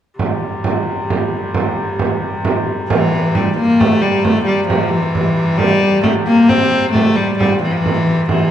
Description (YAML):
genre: medieval dance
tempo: 89 BPM (dotted quarters)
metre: 6/8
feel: straight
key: C mixolydian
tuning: A4 = 440 Hz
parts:
  - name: rich hurdy-gurdy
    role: drone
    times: 0.2-8.5 s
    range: C3 to G3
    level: -23 LUFS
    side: equal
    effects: none
  - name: frame drum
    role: percussion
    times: 0.2-8.5 s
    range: none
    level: -18 LUFS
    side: right 3 dB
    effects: none
  - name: clear viola da gamba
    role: melody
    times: 2.9-8.5 s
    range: E3 to C4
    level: -13 LUFS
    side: left 1 dB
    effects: none
room: wet recital hall reverb, RT60 1.6 s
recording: dark, warm production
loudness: -13 LUFS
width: side -10 dB against mid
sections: 0.2-2.9 A section; 2.9-8.5 B section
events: none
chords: none